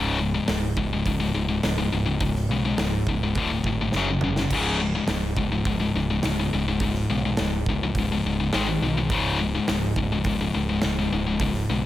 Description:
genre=heavy metal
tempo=104 BPM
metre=4/4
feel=straight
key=unclear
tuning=A4 = 442 Hz
part: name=high-gain distorted guitar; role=riff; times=0.0-11.8 s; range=C#2 to G#3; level=-24 LUFS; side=left 3 dB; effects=distortion
part: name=growling picked electric bass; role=bass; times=0.0-11.9 s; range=C#1 to B1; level=-28 LUFS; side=right 2 dB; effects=overdrive
part: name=big rock drum kit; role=drums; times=0.5-11.6 s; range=crash cymbal, hi-hat, kick drum, snare drum, toms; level=-30 LUFS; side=right 2 dB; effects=none
room=little or no reverb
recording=none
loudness=-22 LUFS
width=side -14 dB against mid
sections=0.0-11.9 A section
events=drum fill 3.9-4.5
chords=0.0 C#5; 3.4 D5; 3.9 F#5; 4.5 C#5; 8.5 G#5; 9.1 C#5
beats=0.48 1.06 1.63 | 2.21 2.79 3.36 3.94 | 4.51 5.09 5.66 6.24 | 6.81 7.38 7.96 8.53 | 9.11 9.68 10.25 10.83 | 11.40

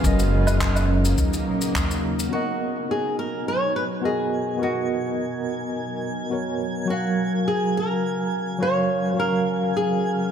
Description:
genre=sunset chillout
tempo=105 BPM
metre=4/4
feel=straight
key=B lydian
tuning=A4 = 440 Hz
part: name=tine electric piano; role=accompaniment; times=0.0-10.3 s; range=F#3 to E#5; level=-25 LUFS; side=equal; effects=medium tremolo, auto-pan, tape echo
part: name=shimmering ambient pad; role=sustained chords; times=0.0-10.3 s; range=B2 to E#5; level=-30 LUFS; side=equal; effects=chorus, built-in reverb
part: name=upright bass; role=bass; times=0.0-2.3 s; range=F#1 to D#2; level=-22 LUFS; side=equal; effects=none
part: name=electronic kick drum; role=drums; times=0.0-1.9 s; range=none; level=-26 LUFS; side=equal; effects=none
part: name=shaker, woodblock and handclaps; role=drums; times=0.0-2.3 s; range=none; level=-28 LUFS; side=equal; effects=low-pass filter on perc, low-pass filter on snare, low-pass filter on room
part: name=flamenco guitar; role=melody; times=2.3-10.3 s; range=F#4 to C#5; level=-25 LUFS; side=equal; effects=tape echo
part: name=twinkling granular texture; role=texture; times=3.2-10.3 s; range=G#5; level=-35 LUFS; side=right 2 dB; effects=built-in reverb
room=light reverb, small room ambience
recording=none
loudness=-21 LUFS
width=side -8 dB against mid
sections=0.0-2.3 A section; 2.3-10.3 B section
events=filter sweep on tine electric piano 0.0-2.3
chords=0.0 F#6; 2.3 Bmaj7; 6.9 F#maj7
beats=| 0.04 0.61 1.18 1.75 | 2.32 2.90 3.47 4.04 | 4.61 5.18 5.75 6.32 | 6.89 7.47 8.04 8.61 | 9.18 9.75

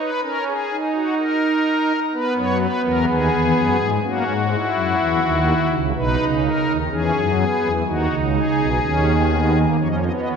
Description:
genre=classical, baroque-style 3-part fugue for pipe organ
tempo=63 BPM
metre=4/4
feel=straight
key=B major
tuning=A4 = 440 Hz
part: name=pipe organ, strings celeste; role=solo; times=0.0-10.4 s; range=B1 to D#5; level=-17 LUFS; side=equal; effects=none
room=wet scoring stage reverb, RT60 1.9 s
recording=none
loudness=-17 LUFS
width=side -6 dB against mid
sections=0.0-9.8 A section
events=none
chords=0.2 F#/C# (rootless); 2.1 B; 4.0 F#7(no3); 5.9 B; 9.8 C#7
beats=0.24 1.18 | 2.13 3.08 4.03 4.99 | 5.95 6.91 7.86 8.82 | 9.79

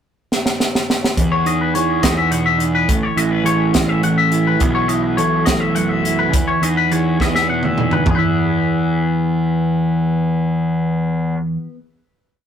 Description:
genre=math rock and midwest emo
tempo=70 BPM (dotted quarters)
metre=6/8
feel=straight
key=E major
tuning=A4 = 439 Hz
part: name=crisp fusion drum kit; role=drums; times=0.3-8.2 s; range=hi-hat, kick drum, snare drum, toms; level=-19 LUFS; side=right 1 dB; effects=none
part: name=mellow electric guitar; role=accompaniment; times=1.2-12.0 s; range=E2 to A4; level=-18 LUFS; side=right 1 dB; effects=none
part: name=fuzz picked electric bass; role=bass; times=1.2-11.3 s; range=A1 to E2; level=-22 LUFS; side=equal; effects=overdrive
part: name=twangy electric guitar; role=arpeggios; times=1.3-11.5 s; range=G#4 to F#5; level=-20 LUFS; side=left 4 dB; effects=tape echo
room=light reverb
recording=rough rehearsal-room recording, warm saturation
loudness=-15 LUFS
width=side -8 dB against mid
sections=0.0-1.2 pickup bar; 1.2-8.1 A section; 8.1-11.5 final chord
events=drum fill 0.3-1.2, 7.2-8.1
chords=0.0 N.C.; 1.2 Emaj7; 2.9 Amaj7; 4.6 B7sus4; 6.3 Emaj7; 8.1 E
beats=0.29 | 1.15 2.02 | 2.88 3.74 | 4.61 5.47 | 6.33 7.20 | 8.06 8.93 | 9.79 10.66

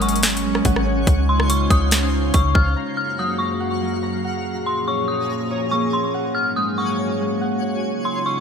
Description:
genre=hip hop, atmospheric cloud-rap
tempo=142 BPM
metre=4/4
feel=half-time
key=unclear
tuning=A4 = 440 Hz
part: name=dark detuned synth bell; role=melody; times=0.0-8.4 s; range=C6 to F6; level=-24 LUFS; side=left 2 dB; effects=chorus, digital delay
part: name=warbly tape-like pad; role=sustained chords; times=0.0-8.4 s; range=Gb2 to Ab4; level=-23 LUFS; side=equal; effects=chorus, built-in reverb, sidechain pumping
part: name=Celtic harp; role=arpeggios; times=0.0-8.4 s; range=Db3 to Bb5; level=-28 LUFS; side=right 3 dB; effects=digital delay
part: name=clean 808-style bass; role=bass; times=0.0-2.8 s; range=Ab1 to Db2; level=-20 LUFS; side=equal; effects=none
part: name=trap drum kit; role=drums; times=0.0-2.6 s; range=hi-hat, kick drum, rim click, snare drum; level=-20 LUFS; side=equal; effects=overdrive
part: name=twinkling granular texture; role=texture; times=0.0-8.4 s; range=Db4 to C6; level=-31 LUFS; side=left 2 dB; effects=built-in reverb, analog chorus
room=moderate lush hall reverb, RT60 2.1 s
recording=bright 1980s-style digital production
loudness=-18 LUFS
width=side -6 dB against mid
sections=0.0-2.8 A section; 2.8-8.4 B section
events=none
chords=0.0 Ab7sus4; 1.1 Dbmaj7; 2.8 Gbmaj7; 4.5 Bbm7; 6.1 Ab7sus4; 7.8 Dbmaj7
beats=0.23 0.65 | 1.07 1.50 1.92 2.34 | 2.76 3.19 3.61 4.03 | 4.45 4.88 5.30 5.72 | 6.14 6.57 6.99 7.41 | 7.83 8.26

